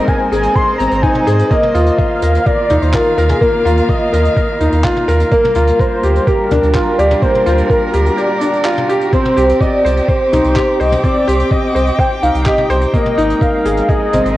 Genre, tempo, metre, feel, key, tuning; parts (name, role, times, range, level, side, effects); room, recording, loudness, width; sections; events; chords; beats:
piano and strings electronica; 126 BPM; 4/4; straight; C minor; A4 = 440 Hz
warm velvety synth lead; melody; 0.0-14.4 s; Ab4 to C6; -16 LUFS; equal; chorus, cassette tape
warm string quartet; sustained chords; 0.0-14.4 s; Eb3 to D6; -23 LUFS; right 1 dB; sidechain pumping, cassette tape
felt-muted upright piano; riff; 0.0-14.4 s; Bb3 to Eb5; -15 LUFS; left 1 dB; cassette tape
electronic kick drum; drums; 0.1-14.0 s; -16 LUFS; equal; cassette tape
jazz brush drum kit; drums; 0.1-14.3 s; handclaps, hi-hat, toms; -27 LUFS; left 1 dB; cassette tape
warm sub bass; bass; 0.3-14.4 s; Ab1 to Ab2; -15 LUFS; equal; sidechain pumping
light reverb, small room ambience; home recording on cassette; -11 LUFS; side -15 dB against mid
0.0-14.4 A section
break 8.2-9.1
0.0 Abadd9; 1.5 Ebsus2; 5.3 Gm7/D; 9.1 Cm; 12.9 Abadd9
0.08 0.56 1.03 | 1.51 1.99 2.46 2.94 | 3.41 3.89 4.37 4.84 | 5.32 5.79 6.27 6.75 | 7.22 7.70 8.18 8.65 | 9.13 9.60 10.08 10.56 | 11.03 11.51 11.98 12.46 | 12.94 13.41 13.89 14.37